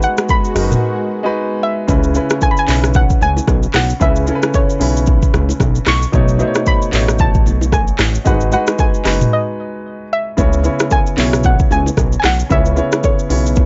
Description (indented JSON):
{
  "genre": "afrobeats",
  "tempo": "113 BPM",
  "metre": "4/4",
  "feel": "swing 58% on 16ths",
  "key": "C# minor",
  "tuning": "A4 = 442 Hz",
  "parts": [
    { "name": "soft round pluck", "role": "melody", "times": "0.0-13.7 s", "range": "C#5 to C#6", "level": "-22 LUFS", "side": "equal", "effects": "chorus" },
    { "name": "warm concert grand piano", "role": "accompaniment", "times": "0.0-13.7 s", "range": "B2 to C#5", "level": "-22 LUFS", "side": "equal", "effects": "none" },
    { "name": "lush unison pad", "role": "sustained chords", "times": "0.0-1.9 s", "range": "G#3 to F#4", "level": "-28 LUFS", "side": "equal", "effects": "chorus" },
    { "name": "fat analog bass", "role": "bass", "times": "0.0-13.7 s", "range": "F#1 to C#2", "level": "-18 LUFS", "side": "equal", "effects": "none" },
    { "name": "afro-pop drum kit", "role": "drums", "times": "0.0-13.7 s", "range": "handclaps, hi-hat, kick drum, rim click, shaker, toms", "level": "-18 LUFS", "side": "equal", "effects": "none" },
    { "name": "bongos and congas", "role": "percussion", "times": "0.3-13.7 s", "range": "none", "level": "-27 LUFS", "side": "equal", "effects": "none" }
  ],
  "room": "little or no reverb",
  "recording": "dry, gritty hardware recording, transformer saturation, cassette tape, nothing above 7.7 kHz",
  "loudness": "-15 LUFS",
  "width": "mono",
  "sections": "0.0-1.9 A section; 1.9-13.7 B section",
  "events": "break 0.8-1.9, 9.3-10.4",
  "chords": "0.0 G#m7; 1.9 C#m7; 6.1 B9; 8.3 G#m7; 10.4 C#m7",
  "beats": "0.29 0.82 1.35 | 1.89 2.42 2.95 3.48 | 4.01 4.54 5.07 5.60 | 6.13 6.67 7.20 7.73 | 8.26 8.79 9.32 9.85 | 10.38 10.91 11.44 11.97 | 12.51 13.04 13.57"
}